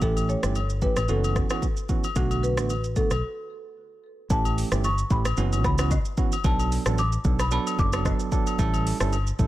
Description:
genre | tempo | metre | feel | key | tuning
afrobeats | 112 BPM | 4/4 | swing 55% on 16ths | B minor | A4 = 440 Hz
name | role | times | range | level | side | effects
marimba with medium mallets | melody | 0.0-8.3 s | F#4 to D6 | -31 LUFS | left 1 dB | digital delay
bell-like tine electric piano | accompaniment | 0.0-9.5 s | D3 to A4 | -30 LUFS | right 7 dB | none
fingered electric bass | bass | 0.0-9.5 s | F#1 to C#2 | -25 LUFS | equal | none
afro-pop drum kit | drums | 0.0-9.5 s | hi-hat, kick drum, rim click, shaker | -26 LUFS | equal | none
agogo bells and woodblock | percussion | 0.2-9.3 s | none | -35 LUFS | left 9 dB | none
room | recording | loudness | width
digital ambience | none | -22 LUFS | side -15 dB against mid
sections
0.0-4.3 A section; 4.3-9.5 B section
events
break 3.2-4.3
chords
0.0 A7; 1.1 F#7sus4; 2.2 Bm7; 4.3 A7; 5.4 F#7sus4; 6.4 Bm7; 8.6 A7

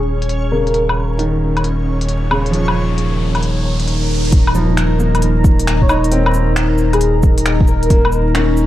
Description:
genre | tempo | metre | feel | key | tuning
future garage | 134 BPM | 4/4 | swing 66% on 16ths | unclear | A4 = 439 Hz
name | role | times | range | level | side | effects
clear upright piano | accompaniment | 0.0-8.7 s | Db3 to Eb4 | -22 LUFS | right 2 dB | sidechain pumping, analog delay
deep dark ambient pad | sustained chords | 1.2-8.7 s | Eb4 to Bb5 | -21 LUFS | left 2 dB | chorus, built-in reverb, sidechain pumping
warm sub bass | bass | 0.0-8.7 s | Eb1 | -17 LUFS | equal | sidechain pumping
backwards swelling texture | texture | 0.0-4.3 s | Db4 to Db5 | -29 LUFS | left 1 dB | built-in reverb
organic electronic drum kit | drums | 0.2-8.7 s | cabasa, finger snaps, hi-hat, woodblock | -21 LUFS | left 1 dB | low-pass filter on hats, low-pass filter on perc, low-pass filter on snare, low-pass filter on room
airy dreamy lead | melody | 0.5-1.2, 5.8-8.3 s | Ab4 to Db5 | -22 LUFS | left 1 dB | chorus, tape echo
riser | sound effects | 1.5-4.3 s | none | -29 LUFS | equal | none
electronic kick drum | drums | 4.3-8.0 s | none | -12 LUFS | equal | none
room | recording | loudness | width
light reverb | vinyl crackle | -13 LUFS | side -14 dB against mid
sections
0.0-4.3 A section; 4.3-8.7 B section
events
filter sweep on ambient pad 0.0-4.3; riser 1.5-4.3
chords
0.0 Ebm7; 4.3 Eb5

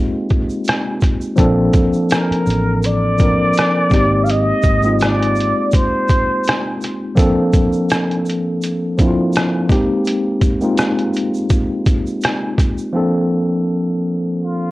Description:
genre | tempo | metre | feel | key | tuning
lo-fi hip hop | 83 BPM | 4/4 | swing 56% on 16ths | Bb major | A4 = 439 Hz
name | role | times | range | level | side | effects
mellow tine electric piano | accompaniment | 0.0-14.7 s | F3 to Bb4 | -17 LUFS | equal | medium stereo tremolo, low-pass filter
trip hop sampler-style drum kit | drums | 0.3-12.8 s | hi-hat, kick drum, rim click | -16 LUFS | equal | none
egg shaker | percussion | 0.3-12.9 s | none | -40 LUFS | right 4 dB | none
vintage muted fingered electric bass | bass | 1.4-5.5 s | Ab1 to Bb1 | -19 LUFS | equal | none
trumpet with plunger mute | melody | 2.1-6.8, 14.4-14.7 s | F4 to F5 | -18 LUFS | equal | low-pass filter
room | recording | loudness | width
moderate studio reverb, RT60 0.6 s | worn, warbling old tape, cassette tape, warbly pitch drift | -14 LUFS | side -18 dB against mid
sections
0.0-12.9 A section; 12.9-14.7 B section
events
none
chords
0.0 Abmaj9; 1.4 Bbmaj9; 3.9 Abmaj9; 7.2 Bbmaj9; 9.7 Abmaj9; 12.9 Bbmaj9

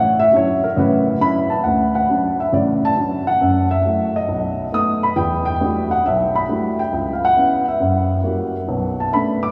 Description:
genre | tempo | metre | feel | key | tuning
solo jazz | 136 BPM | 4/4 | swing 67% on 8ths | D major | A4 = 440 Hz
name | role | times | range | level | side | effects
dark upright piano | solo | 0.0-9.5 s | A1 to D#6 | -18 LUFS | equal | none
room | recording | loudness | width
wet cathedral reverb, RT60 5.8 s | recorded in a church or concert hall, small room ambience | -18 LUFS | mono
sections
0.0-1.7 A section; 1.7-9.5 B section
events
upright piano solo 0.0-1.7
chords
0.0 Dmaj9; 1.7 Dmaj7; 3.4 F#m7; 4.3 B7; 5.2 Em11; 6.9 C#madd11; 7.8 F#7b9; 8.7 Bm9

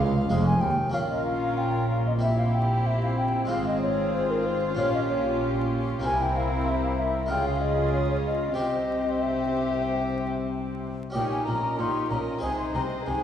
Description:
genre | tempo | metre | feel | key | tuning
classical, baroque-style concerto movement with solo episodes | 94 BPM | 4/4 | straight | unclear | A4 = 440 Hz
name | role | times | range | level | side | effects
mellow hollow silver concert flute | melody | 0.0-13.2 s | Bb4 to C6 | -28 LUFS | left 1 dB | none
warm chamber violin section | melody | 0.0-13.2 s | G4 to F5 | -38 LUFS | left 4 dB | none
warm chamber violin section | second line | 0.0-13.2 s | E4 to C5 | -34 LUFS | left 3 dB | none
harpsichord | accompaniment | 0.0-13.2 s | Db2 to Eb5 | -34 LUFS | right 1 dB | none
warm chamber viola section | accompaniment | 0.0-13.2 s | Ab3 to F4 | -32 LUFS | equal | none
rich chamber cello section | bass | 0.0-13.2 s | Db2 to Db3 | -31 LUFS | right 1 dB | none
rich chamber double bass section | bass | 0.0-13.1 s | F1 to Eb2 | -31 LUFS | equal | none
room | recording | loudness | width
wet recital hall reverb, RT60 1.4 s | heard from further back in the room, vinyl crackle, lossy compression artefacts | -23 LUFS | side -9 dB against mid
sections
0.9-13.2 A section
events
none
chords
0.0 Fm; 0.9 Bbm; 2.2 C7/Bb; 3.5 Fm/Ab; 4.8 Gm7b5/Bb; 6.0 C7; 7.3 Db; 8.6 C; 11.2 Eb7/Bb; 12.4 Ab/C

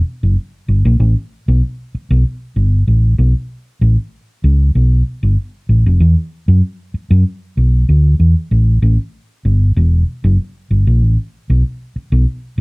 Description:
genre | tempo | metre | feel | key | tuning
funk | 96 BPM | 4/4 | straight | unclear | A4 = 440 Hz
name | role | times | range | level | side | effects
hollow-body short-scale fingered electric bass | solo | 0.2-12.6 s | E1 to F#2 | -11 LUFS | equal | none
room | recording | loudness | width
light reverb | dry, close 1970s-style studio recording | -12 LUFS | side -32 dB against mid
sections
0.0-12.6 A section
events
none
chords
none

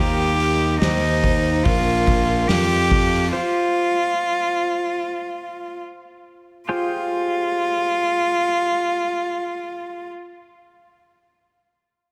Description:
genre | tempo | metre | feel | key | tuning
post-rock | 72 BPM | 4/4 | straight | F minor | A4 = 440 Hz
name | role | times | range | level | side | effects
warm cello | melody | 0.0-10.1 s | Eb4 to G4 | -23 LUFS | equal | tape echo
pedal steel guitar | sustained chords | 0.0-10.1 s | F4 to Bb5 | -33 LUFS | equal | subtle chorus
fuzz fingered electric bass | bass | 0.0-3.3 s | Bb1 to F2 | -23 LUFS | equal | overdrive
soft-mallet drum kit | drums | 0.4-3.1 s | hi-hat, kick drum, snare drum | -25 LUFS | equal | none
vibraphone with soft mallets | arpeggios | 0.8-2.5 s | Bb4 to C5 | -32 LUFS | equal | tape echo
room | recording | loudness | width
light reverb | none | -20 LUFS | mono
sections
0.0-6.7 A section; 6.7-10.0 B section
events
none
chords
0.0 Eb; 3.3 Bbsus2; 6.7 Fmadd9

